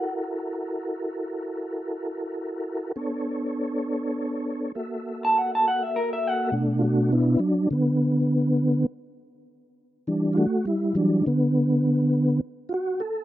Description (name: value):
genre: blues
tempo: 68 BPM (dotted quarters)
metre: 12/8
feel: straight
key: B minor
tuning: A4 = 441 Hz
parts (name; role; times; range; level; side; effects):
- electric guitar through a small old amp; melody; 0.0-6.5 s; A#4 to A5; -24 LUFS; equal; none
- mellow tonewheel organ; sustained chords; 0.0-13.2 s; B2 to E5; -23 LUFS; equal; slow rotary speaker, chorus vibrato
room: digital ambience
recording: rough home demo mix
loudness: -22 LUFS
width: side -14 dB against mid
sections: 0.0-6.5 A section; 6.5-13.2 A section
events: clean electric guitar solo 0.0-6.5; tonewheel organ solo 6.5-13.2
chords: 0.0 F#7#9; 3.0 Bm9; 4.7 F#7#9; 6.5 Bm7; 10.1 Em9